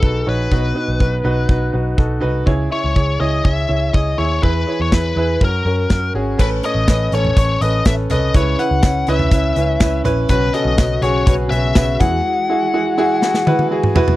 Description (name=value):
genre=piano-driven pop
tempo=123 BPM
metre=4/4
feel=straight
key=B mixolydian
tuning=A4 = 439 Hz
part: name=biting lead guitar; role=melody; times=0.0-13.7 s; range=A4 to F#5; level=-21 LUFS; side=left 3 dB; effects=overdrive
part: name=clear concert grand piano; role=accompaniment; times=0.0-14.2 s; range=A2 to E5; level=-20 LUFS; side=right 1 dB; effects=none
part: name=vintage muted picked electric bass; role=bass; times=0.0-12.2 s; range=G#1 to F#2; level=-19 LUFS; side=equal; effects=none
part: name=modern studio drum kit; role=drums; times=0.0-14.2 s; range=crash cymbal, hi-hat, kick drum, snare drum, toms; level=-15 LUFS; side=equal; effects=none
part: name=tambourine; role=percussion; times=6.9-11.9 s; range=none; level=-37 LUFS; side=right 9 dB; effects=none
part: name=mellow tonewheel organ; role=sustained chords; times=10.3-14.2 s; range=C#3 to F#4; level=-27 LUFS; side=left 1 dB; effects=chorus vibrato, fast rotary speaker
room=little or no reverb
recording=dry, close 1970s-style studio recording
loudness=-14 LUFS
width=side -16 dB against mid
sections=0.0-6.4 A section; 6.4-14.2 B section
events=drum fill 13.2-14.2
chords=0.0 B; 2.5 C#m; 4.4 E; 5.4 F#; 6.4 Aadd9; 8.3 C#m7; 10.3 Bsus2; 12.0 Eadd9